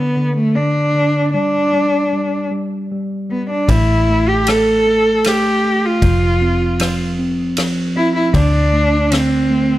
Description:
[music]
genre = acoustic folk-pop ballad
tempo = 77 BPM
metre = 3/4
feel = straight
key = unclear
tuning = A4 = 439 Hz
[part]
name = warm cello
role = melody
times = 0.0-9.8 s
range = A3 to A4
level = -16 LUFS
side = equal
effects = none
[part]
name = mellow tine electric piano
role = accompaniment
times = 0.0-9.8 s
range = D3 to C4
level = -19 LUFS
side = equal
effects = none
[part]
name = vintage muted fingered electric bass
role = bass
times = 3.7-9.8 s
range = F1 to D2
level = -18 LUFS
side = equal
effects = none
[part]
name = natural country drum kit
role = drums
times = 3.7-9.3 s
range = kick drum, ride cymbal, rim click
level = -22 LUFS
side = left 1 dB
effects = none
[sound]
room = light reverb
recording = none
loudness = -13 LUFS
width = side -15 dB against mid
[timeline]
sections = 0.0-9.8 A section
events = none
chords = 0.0 N.C.; 3.7 Fmaj9/A (rootless); 6.0 F5; 8.3 D5

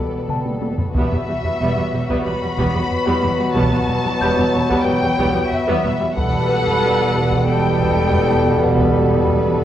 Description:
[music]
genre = cinematic, suspense film score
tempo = 92 BPM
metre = 4/4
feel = straight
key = E minor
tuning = A4 = 439 Hz
[part]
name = muted studio violin section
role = melody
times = 0.0-9.6 s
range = B4 to B5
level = -24 LUFS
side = left 3 dB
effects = none
[part]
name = muted studio violin section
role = second line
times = 0.0-9.6 s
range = F#4 to B4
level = -25 LUFS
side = left 3 dB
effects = none
[part]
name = muted studio viola section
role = accompaniment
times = 0.0-9.6 s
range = G3 to B4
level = -24 LUFS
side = right 1 dB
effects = none
[part]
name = mellow French horn section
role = sustained chords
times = 0.0-9.6 s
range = F#3 to A4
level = -24 LUFS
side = left 3 dB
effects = none
[part]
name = warm trombone section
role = sustained chords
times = 0.0-9.6 s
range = B2 to G3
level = -25 LUFS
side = right 2 dB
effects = none
[part]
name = muted studio cello section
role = bass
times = 0.0-9.6 s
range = E2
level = -24 LUFS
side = right 3 dB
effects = none
[part]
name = muted studio double bass section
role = bass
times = 0.0-9.6 s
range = E1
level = -24 LUFS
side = right 3 dB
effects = none
[part]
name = celesta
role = texture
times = 0.0-9.6 s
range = B4 to G6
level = -32 LUFS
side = left 3 dB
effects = none
[part]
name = taiko ensemble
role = drums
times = 0.3-9.6 s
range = none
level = -26 LUFS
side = equal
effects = none
[part]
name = timpani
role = percussion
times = 6.2-9.6 s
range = E2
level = -27 LUFS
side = equal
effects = none
[sound]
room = wet scoring stage reverb, RT60 1.4 s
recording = worn, warbling old tape, cassette tape, warbly pitch drift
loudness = -15 LUFS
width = side -11 dB against mid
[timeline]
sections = 0.0-9.6 A section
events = drum fill 0.3-1.0; timpani fill 6.2-9.6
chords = 0.0 Gadd9/E; 1.0 Emadd9; 6.2 Gadd9/E

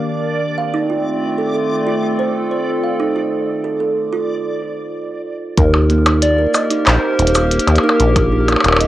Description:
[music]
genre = IDM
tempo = 93 BPM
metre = 4/4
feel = straight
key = Eb lydian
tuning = A4 = 439 Hz
[part]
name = soft struck synth lead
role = melody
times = 0.0-0.1, 5.6-8.9 s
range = Bb4 to D5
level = -19 LUFS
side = left 1 dB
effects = chorus, cassette tape
[part]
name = warbly tape-like pad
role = sustained chords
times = 0.0-8.9 s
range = Eb3 to Bb4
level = -21 LUFS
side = left 1 dB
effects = chorus, built-in reverb, cassette tape
[part]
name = backwards swelling texture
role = texture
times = 0.0-4.3 s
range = D5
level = -27 LUFS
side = right 2 dB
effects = built-in reverb, cassette tape
[part]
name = kalimba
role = arpeggios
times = 0.6-8.9 s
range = Bb3 to F5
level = -20 LUFS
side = right 4 dB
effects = cassette tape, analog delay
[part]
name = deep acid bass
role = bass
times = 5.6-8.9 s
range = Eb1 to Eb2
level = -14 LUFS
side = equal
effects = none
[part]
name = electronic kick drum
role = drums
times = 5.6-8.3 s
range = none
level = -17 LUFS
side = equal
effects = cassette tape
[part]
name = glitchy drum kit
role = drums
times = 5.6-8.9 s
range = cabasa, handclaps, hi-hat, percussion blips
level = -17 LUFS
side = left 1 dB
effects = cassette tape
[sound]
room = moderate small room reverb, RT60 0.6 s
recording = home recording on cassette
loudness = -14 LUFS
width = side -14 dB against mid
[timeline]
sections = 0.0-5.6 A section; 5.6-8.9 B section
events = break 4.3-5.6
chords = 0.4 F7; 5.6 Ebmaj7

